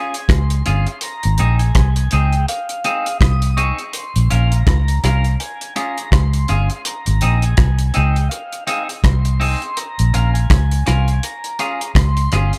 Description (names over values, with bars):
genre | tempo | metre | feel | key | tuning
roots reggae | 82 BPM | 4/4 | swing 58% on 16ths | unclear | A4 = 440 Hz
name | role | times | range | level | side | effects
mellow tonewheel organ | melody | 0.0-12.6 s | F5 to Eb6 | -29 LUFS | equal | slow rotary speaker, dub echo
semi-hollow electric guitar | accompaniment | 0.0-12.6 s | C4 to Bb4 | -26 LUFS | equal | dub echo
cloth-damped thuddy drum kit | drums | 0.1-12.6 s | hi-hat, kick drum, rim click | -21 LUFS | equal | none
vintage muted fingered electric bass | bass | 0.3-12.5 s | G1 to Db2 | -17 LUFS | equal | none
room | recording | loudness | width
little or no reverb | none | -17 LUFS | mono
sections
0.0-12.6 A section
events
none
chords
0.0 Db; 1.0 Ab; 3.9 Bbm; 5.4 Db; 6.9 Ab; 9.8 Bbm; 11.2 Db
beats
0.30 | 1.03 1.76 2.48 3.21 | 3.94 4.67 5.40 6.13 | 6.86 7.58 8.31 9.04 | 9.77 10.50 11.22 11.95